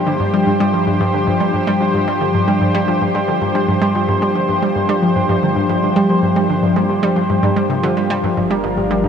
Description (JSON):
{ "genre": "ambient, sequencer-driven space music", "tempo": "112 BPM", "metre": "4/4", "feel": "straight", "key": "G minor", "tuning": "A4 = 445 Hz", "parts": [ { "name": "lush unison pad", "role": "sustained chords", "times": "0.0-9.1 s", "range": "G2 to C5", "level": "-18 LUFS", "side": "right 1 dB", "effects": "chorus" }, { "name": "concert harp", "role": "arpeggios", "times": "0.0-9.1 s", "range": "F3 to Bb4", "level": "-19 LUFS", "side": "left 3 dB", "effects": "auto-pan, low-pass filter, analog delay" }, { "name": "analog pluck", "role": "riff", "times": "0.0-9.1 s", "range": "G2 to G3", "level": "-19 LUFS", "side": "right 1 dB", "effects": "chorus, analog delay" }, { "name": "warm sub bass", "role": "bass", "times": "8.4-9.1 s", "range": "G1", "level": "-29 LUFS", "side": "equal", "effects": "none" } ], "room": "wet huge ambient reverb, RT60 8.7 s", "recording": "none", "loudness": "-14 LUFS", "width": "side -7 dB against mid", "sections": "0.0-8.4 A section", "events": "none", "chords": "0.0 Gm7" }